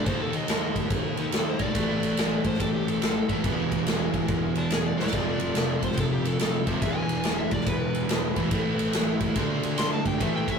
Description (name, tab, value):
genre	blues rock power trio and southern rock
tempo	142 BPM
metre	4/4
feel	swing 65% on 8ths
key	A minor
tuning	A4 = 440 Hz
part	overdriven slide guitar	melody	0.0-10.6 s	D4 to C6	-33 LUFS	left 1 dB	none
part	overdriven electric guitar	riff	0.0-10.6 s	E2 to D#4	-27 LUFS	equal	none
part	fuzz fingered electric bass	bass	0.0-10.6 s	E1 to E2	-35 LUFS	equal	overdrive
part	overdriven tonewheel organ	sustained chords	0.1-10.6 s	B#3 to D5	-41 LUFS	right 2 dB	none
part	big rock drum kit	drums	0.1-10.6 s	kick drum, ride cymbal, snare drum	-27 LUFS	equal	none
room	wet booth ambience, RT60 0.2 s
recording	rough rehearsal-room recording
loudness	-23 LUFS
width	side -6 dB against mid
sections	0.0-10.6 A section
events	electric slide guitar solo 0.0-10.6; drum fill 4.9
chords	0.1 D#dim7; 1.8 Am7; 3.4 E7b9; 5.1 Fmaj7; 6.8 E7b9; 8.5 Am7; 9.4 Dm7